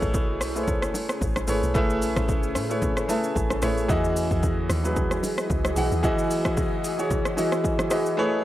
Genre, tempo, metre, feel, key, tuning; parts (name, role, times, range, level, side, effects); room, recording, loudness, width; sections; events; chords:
amapiano; 112 BPM; 4/4; swing 55% on 16ths; E major; A4 = 445 Hz
clear grand piano; accompaniment; 0.0-8.4 s; E3 to A5; -25 LUFS; equal
granular cloud pad; sustained chords; 0.0-8.4 s; A3 to D#5; -32 LUFS; left 1 dB; built-in reverb, sidechain pumping
deep log drum bass; bass; 0.0-6.0 s; G#1 to A2; -28 LUFS; equal
deep house drum kit; drums; 0.0-8.2 s; hi-hat, kick drum, rim click, shaker; -28 LUFS; equal; overdrive
bongos and congas; percussion; 0.1-7.9 s; -34 LUFS; equal
little or no reverb; dry, gritty hardware recording; -22 LUFS; side -14 dB against mid
0.0-8.4 A section
grand piano fill 2.8-3.9
0.0 Amaj9; 3.9 Emaj9